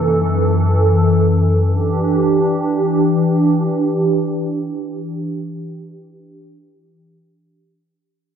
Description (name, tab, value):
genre	amapiano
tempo	free time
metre	none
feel	none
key	E minor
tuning	A4 = 439 Hz
part	hollow soft pad	sustained chords	0.0-6.4 s	F#2 to A4	-14 LUFS	equal	ensemble chorus, low-pass filter
room	wet lush hall reverb, RT60 2.3 s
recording	dark, warm production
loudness	-14 LUFS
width	side -8 dB against mid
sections	0.0-1.7 A section; 1.7-6.1 B section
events	filter sweep on analog synth pad 0.0-1.7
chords	0.0 F#m7; 1.7 Em7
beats	free time